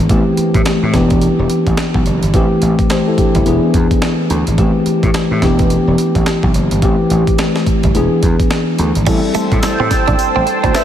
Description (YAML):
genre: R&B, new jack swing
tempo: 107 BPM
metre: 4/4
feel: swing 60% on 16ths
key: A minor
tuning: A4 = 438 Hz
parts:
  - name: tine electric piano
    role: accompaniment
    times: 0.0-10.8 s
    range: E3 to E5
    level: -14 LUFS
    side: left 1 dB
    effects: analog chorus
  - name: gritty slap bass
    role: bass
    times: 0.0-10.7 s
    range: E1 to A2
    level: -17 LUFS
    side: right 1 dB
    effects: overdrive
  - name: breakbeat sampler-style drum kit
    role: drums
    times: 0.1-10.8 s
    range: crash cymbal, handclaps, hi-hat, kick drum, snare drum, tambourine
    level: -17 LUFS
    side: equal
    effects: none
  - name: phased analog pad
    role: sustained chords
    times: 9.3-10.8 s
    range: C5 to E6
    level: -17 LUFS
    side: right 4 dB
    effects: phaser, chorus
  - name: direct-recorded clean electric guitar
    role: riff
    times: 9.1-10.8 s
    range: G3 to D4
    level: -20 LUFS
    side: right 8 dB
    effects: wide subtle chorus
room: moderate cathedral reverb, RT60 6.6 s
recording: dreamy mix soaked in reverb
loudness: -11 LUFS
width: side -10 dB against mid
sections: 0.0-9.1 A section; 9.1-10.8 B section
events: none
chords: 0.1 Am7; 0.9 Em7; 2.3 Am7; 3.5 E7; 4.6 Am7; 5.4 Em7; 6.8 Am7; 7.9 E7; 9.1 Am7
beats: | 0.09 0.66 1.22 1.78 | 2.34 2.90 3.46 4.02 | 4.58 5.14 5.70 6.26 | 6.82 7.38 7.94 8.51 | 9.07 9.63 10.19 10.75